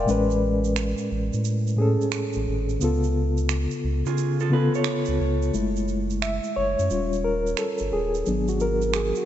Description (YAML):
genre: R&B, neo-soul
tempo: 88 BPM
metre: 4/4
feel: swing 64% on 16ths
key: F# minor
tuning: A4 = 440 Hz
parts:
  - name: mellow reed electric piano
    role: accompaniment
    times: 0.0-9.3 s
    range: A2 to E#5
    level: -24 LUFS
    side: left 1 dB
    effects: fast tremolo
  - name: warm sub bass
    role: bass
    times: 0.0-9.1 s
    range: D#1 to C#3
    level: -26 LUFS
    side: equal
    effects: none
  - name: tube shaker and finger snaps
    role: percussion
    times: 0.1-9.3 s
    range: none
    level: -34 LUFS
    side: right 11 dB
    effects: none
  - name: electric guitar through a small old amp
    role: second line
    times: 4.1-5.5 s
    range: E#4 to C#5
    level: -31 LUFS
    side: right 5 dB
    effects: ping-pong delay
room: moderate lush hall reverb, RT60 2.8 s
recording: dreamy mix soaked in reverb, nothing above 8.0 kHz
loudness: -22 LUFS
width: side -11 dB against mid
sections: 0.0-5.5 A section; 5.5-9.3 B section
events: reed electric piano solo 5.5-9.3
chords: 0.1 Amaj9; 2.8 C#7b13; 5.5 F#m7; 6.9 D#7; 8.3 G#m7b5